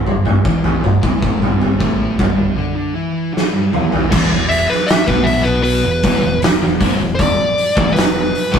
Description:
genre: stoner and doom metal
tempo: 78 BPM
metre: 4/4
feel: straight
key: unclear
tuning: A4 = 440 Hz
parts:
  - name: thick fuzz guitar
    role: riff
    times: 0.0-8.6 s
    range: E2 to E4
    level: -24 LUFS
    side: left 5 dB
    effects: distortion
  - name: thick fuzz guitar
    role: riff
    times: 0.0-8.6 s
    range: E2 to E4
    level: -20 LUFS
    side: right 3 dB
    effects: distortion
  - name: growling fingered electric bass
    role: bass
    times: 0.0-8.6 s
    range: E1 to E2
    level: -25 LUFS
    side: equal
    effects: overdrive
  - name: oversized low-tuned drum kit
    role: drums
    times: 0.1-8.6 s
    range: crash cymbal, hi-hat, kick drum, snare drum, toms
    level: -16 LUFS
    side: equal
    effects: none
  - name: heavy high-gain guitar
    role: riff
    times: 4.1-8.6 s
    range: E2 to B3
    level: -24 LUFS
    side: left 1 dB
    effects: distortion
  - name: fuzz lead guitar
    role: melody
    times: 4.5-8.6 s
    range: B4 to E5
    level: -17 LUFS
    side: left 1 dB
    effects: distortion, slapback echo
room: light reverb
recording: rough rehearsal-room recording, tube saturation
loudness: -13 LUFS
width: side -7 dB against mid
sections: 0.0-4.1 A section; 4.1-8.6 B section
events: break 2.6-4.1; drum fill 3.3-4.1; lead electric guitar solo 4.1-8.6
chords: 0.0 G5; 4.1 E5

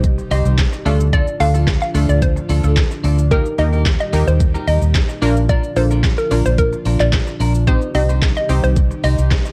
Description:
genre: dance-pop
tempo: 110 BPM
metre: 4/4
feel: straight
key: C dorian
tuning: A4 = 435 Hz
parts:
  - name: hollow square pluck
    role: melody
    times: 0.0-9.2 s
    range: A4 to F5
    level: -24 LUFS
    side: equal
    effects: chorus, digital delay
  - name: analog pluck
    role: accompaniment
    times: 0.0-9.3 s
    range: A3 to C5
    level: -26 LUFS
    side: equal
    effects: chorus, sidechain pumping
  - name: airy breathy pad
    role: sustained chords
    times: 0.0-9.5 s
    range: A2 to G4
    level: -29 LUFS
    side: equal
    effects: chorus, sidechain pumping
  - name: clean electric guitar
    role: riff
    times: 0.0-9.5 s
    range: D4 to C5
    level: -31 LUFS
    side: equal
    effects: subtle chorus
  - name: vintage muted fingered electric bass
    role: bass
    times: 0.0-9.4 s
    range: Bb1 to Eb2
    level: -18 LUFS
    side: equal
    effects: sidechain pumping
  - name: smooth R&B drum kit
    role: drums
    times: 0.0-9.5 s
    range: handclaps, hi-hat, kick drum, shaker, snare drum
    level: -21 LUFS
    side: equal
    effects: none
  - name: impact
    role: sound effects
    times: 0.2-1.1 s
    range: none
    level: barely audible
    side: none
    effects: none
room: little or no reverb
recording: worn, warbling old tape, cassette tape, warbly pitch drift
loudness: -16 LUFS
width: mono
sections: 0.0-9.5 A section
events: impact 0.0-1.1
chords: 0.0 Cm; 0.9 Dm; 3.3 Eb; 5.2 Bb; 7.7 Cm

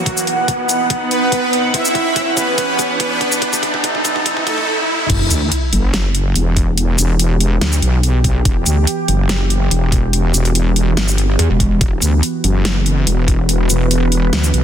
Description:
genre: heavy wobble dubstep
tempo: 143 BPM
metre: 4/4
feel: half-time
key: E minor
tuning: A4 = 441 Hz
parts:
  - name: soft supersaw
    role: melody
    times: 0.0-4.7 s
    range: F#3 to E5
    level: -19 LUFS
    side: right 1 dB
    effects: dub echo
  - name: evolving wavetable pad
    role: sustained chords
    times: 0.0-14.6 s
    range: E2 to F#5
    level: -21 LUFS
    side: right 2 dB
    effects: chorus, built-in reverb, sidechain pumping
  - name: riser and sub drop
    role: sound effects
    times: 0.0-6.8 s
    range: none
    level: -21 LUFS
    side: equal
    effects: none
  - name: dubstep drum kit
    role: drums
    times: 0.1-14.6 s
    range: crash cymbal, hi-hat, shaker, snare drum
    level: -20 LUFS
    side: equal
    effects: none
  - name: electronic kick drum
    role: drums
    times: 0.1-13.4 s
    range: none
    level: -18 LUFS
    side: equal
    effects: none
  - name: wobble bass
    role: bass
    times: 5.1-14.6 s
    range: E1 to D2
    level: -15 LUFS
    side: equal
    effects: chorus, overdrive
  - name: pulsing pluck wobble bass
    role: bass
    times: 11.4-11.8 s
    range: E1 to E2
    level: -13 LUFS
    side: equal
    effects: chorus, overdrive
room: light reverb, digital ambience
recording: dense, heavily limited modern master, high-pass filter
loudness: -13 LUFS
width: side -9 dB against mid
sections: 0.0-5.1 A section; 5.1-14.6 B section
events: build-up 0.0-5.1; drum fill 0.0-4.7; riser 0.0-5.1; drop 5.1-14.6; impact 5.1-6.8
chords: 0.1 B; 1.7 Emadd9; 3.4 Am; 4.3 Dadd9; 5.1 Emadd9

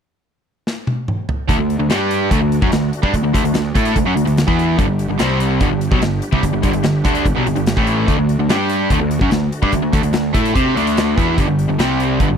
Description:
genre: classic rock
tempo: 146 BPM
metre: 4/4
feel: straight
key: D major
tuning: A4 = 440 Hz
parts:
  - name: big rock drum kit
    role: drums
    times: 0.7-12.3 s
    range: hi-hat, kick drum, snare drum, toms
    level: -20 LUFS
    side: equal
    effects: none
  - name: bright tonewheel organ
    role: sustained chords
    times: 1.5-12.4 s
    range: G3 to G4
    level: -30 LUFS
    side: left 1 dB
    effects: none
  - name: crunchy overdriven guitar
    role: riff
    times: 1.5-12.4 s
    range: G2 to C5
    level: -20 LUFS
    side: left 14 dB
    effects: none
  - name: crunchy overdriven guitar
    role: riff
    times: 1.5-12.4 s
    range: G2 to C5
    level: -19 LUFS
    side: right 13 dB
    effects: none
  - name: fuzz picked electric bass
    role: bass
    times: 1.5-12.4 s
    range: G1 to C3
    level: -21 LUFS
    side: equal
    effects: overdrive
room: little or no reverb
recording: dry, close 1970s-style studio recording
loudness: -14 LUFS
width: side -7 dB against mid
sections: 0.0-1.5 A section; 1.5-12.4 B section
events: drum fill 0.7-1.5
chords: 0.0 N.C.; 1.5 D; 1.9 G5; 2.3 D; 4.8 G5; 5.2 C5; 5.6 G5; 8.1 D; 8.5 G5; 8.9 D; 11.4 G5; 11.8 C5

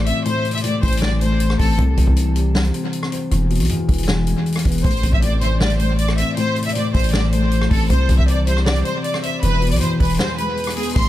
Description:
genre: hip hop, trap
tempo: 157 BPM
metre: 4/4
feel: half-time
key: A minor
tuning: A4 = 440 Hz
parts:
  - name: dark concert grand piano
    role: accompaniment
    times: 0.0-11.1 s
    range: E2 to C5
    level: -22 LUFS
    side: left 2 dB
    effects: analog delay
  - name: long sustained 808-style bass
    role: bass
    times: 0.0-11.1 s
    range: E1 to C2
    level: -18 LUFS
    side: equal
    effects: none
  - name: warm studio violin section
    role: melody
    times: 0.1-1.7, 4.8-11.1 s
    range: G#4 to C6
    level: -24 LUFS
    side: equal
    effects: analog delay
  - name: vintage drum kit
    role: drums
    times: 0.1-11.1 s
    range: crash cymbal, hi-hat, kick drum, rim click, snare drum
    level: -22 LUFS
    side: equal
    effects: analog delay
room: small room ambience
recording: echo-heavy mix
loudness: -16 LUFS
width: side -14 dB against mid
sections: 0.0-11.0 A section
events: break 10.2-11.0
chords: 0.0 Am; 1.8 C; 3.3 E; 4.8 Am; 7.9 C; 9.4 E

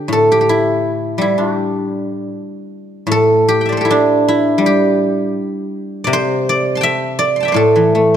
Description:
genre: chinese traditional, Chinese solo plucked strings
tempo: 80 BPM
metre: 2/4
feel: rubato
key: G zhi mode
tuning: A4 = 441 Hz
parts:
  - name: guzheng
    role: solo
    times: 0.0-8.2 s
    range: A2 to C6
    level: -13 LUFS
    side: equal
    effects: none
room: moderate concert hall reverb, RT60 1.9 s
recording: none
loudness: -12 LUFS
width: side -9 dB against mid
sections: 0.0-3.1 A section; 3.1-8.2 B section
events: none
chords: none

